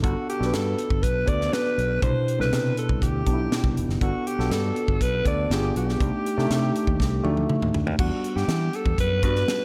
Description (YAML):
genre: polished 1980s jazz-funk pop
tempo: 121 BPM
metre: 4/4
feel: straight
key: G major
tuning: A4 = 439 Hz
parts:
  - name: breathy alto saxophone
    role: melody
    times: 0.0-9.6 s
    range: F#4 to D5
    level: -30 LUFS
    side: equal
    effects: none
  - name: tine electric piano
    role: accompaniment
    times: 0.0-9.6 s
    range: B2 to F#5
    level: -30 LUFS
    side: equal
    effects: overdrive, tube saturation, subtle chorus
  - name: fingered electric bass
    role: bass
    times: 0.0-9.4 s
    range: F1 to E3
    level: -28 LUFS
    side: equal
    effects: none
  - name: tight funk drum kit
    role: drums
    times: 0.0-9.6 s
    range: crash cymbal, hi-hat, kick drum, snare drum, toms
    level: -29 LUFS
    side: equal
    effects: none
room: moderate lush hall reverb, RT60 1.7 s, studio reverb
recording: dreamy mix soaked in reverb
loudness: -24 LUFS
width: mono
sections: 0.0-8.0 A section; 8.0-9.6 B section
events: drum fill 7.0-8.0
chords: 0.0 Gmaj9; 2.0 Cmaj9; 4.0 Gmaj9; 5.5 G7b9; 6.0 Cm6; 8.0 Em9